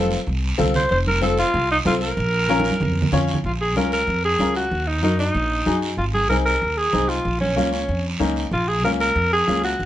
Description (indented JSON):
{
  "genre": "latin, cumbia",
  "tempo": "189 BPM",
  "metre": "4/4",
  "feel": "straight",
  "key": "Bb harmonic minor, Bb minor from 3.4 s",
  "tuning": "A4 = 439 Hz",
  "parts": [
    { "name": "growling alto saxophone", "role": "melody", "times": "0.0-9.9 s", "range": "Db4 to C5", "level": "-21 LUFS", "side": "right 1 dB", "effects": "none" },
    { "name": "bright upright piano", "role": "accompaniment", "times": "0.0-9.7 s", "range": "Bb3 to Db5", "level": "-24 LUFS", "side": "left 4 dB", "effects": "none" },
    { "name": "upright bass", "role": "bass", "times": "0.0-9.9 s", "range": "F1 to Gb2", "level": "-24 LUFS", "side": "equal", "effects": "none" },
    { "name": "guiro", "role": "percussion", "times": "0.1-9.9 s", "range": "none", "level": "-32 LUFS", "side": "right 4 dB", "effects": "none" },
    { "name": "congas", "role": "percussion", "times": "0.6-9.6 s", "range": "none", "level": "-26 LUFS", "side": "right 3 dB", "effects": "none" }
  ],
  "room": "moderate studio reverb, RT60 0.6 s",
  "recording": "nothing above 10.4 kHz",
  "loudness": "-18 LUFS",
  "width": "side -13 dB against mid",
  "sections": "0.0-3.4 A section; 3.4-9.9 B section",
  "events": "drum fill 2.5-3.4",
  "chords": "0.0 F; 2.2 Bbm; 4.7 Ebm; 6.0 Ab; 7.3 Bbm"
}